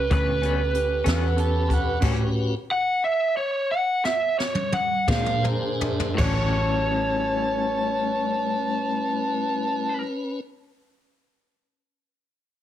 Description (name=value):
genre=slow blues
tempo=53-63 BPM (dotted quarters)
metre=12/8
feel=straight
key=A mixolydian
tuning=A4 = 437 Hz
part: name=lead guitar through a small cranked amp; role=melody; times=0.0-10.0 s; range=B4 to F#5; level=-25 LUFS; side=right 1 dB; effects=overdrive, slapback echo
part: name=clear upright piano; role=accompaniment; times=0.0-10.0 s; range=C#4 to Bb5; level=-35 LUFS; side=right 3 dB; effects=none
part: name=tonewheel organ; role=sustained chords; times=0.0-10.4 s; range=D3 to C#5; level=-31 LUFS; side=left 2 dB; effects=slow rotary speaker
part: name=vintage muted fingered electric bass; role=bass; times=0.0-10.0 s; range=A1 to Bb2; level=-26 LUFS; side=equal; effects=none
part: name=electric guitar through a small old amp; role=accompaniment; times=0.1-10.1 s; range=A2 to F#4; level=-30 LUFS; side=left 7 dB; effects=tremolo
part: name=jazz brush drum kit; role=drums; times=0.1-6.4 s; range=crash cymbal, hi-hat, kick drum, snare drum, toms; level=-27 LUFS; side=equal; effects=none
part: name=overdriven harmonica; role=second line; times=1.1-10.0 s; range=D5 to A5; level=-28 LUFS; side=right 1 dB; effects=none
room=moderate club reverb, RT60 0.6 s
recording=heavily compressed radio sound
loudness=-21 LUFS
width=side -11 dB against mid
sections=0.0-6.2 A section; 6.2-10.7 B section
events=slowing down 0.7-6.2; drum fill 4.0-6.2; upright piano fill 5.1-6.2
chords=0.0 A9; 2.0 A13; 5.1 Bb9; 6.2 A13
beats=0.11 1.06 | 2.02 3.00 4.02 5.07 | 6.18 7.32 8.46 9.60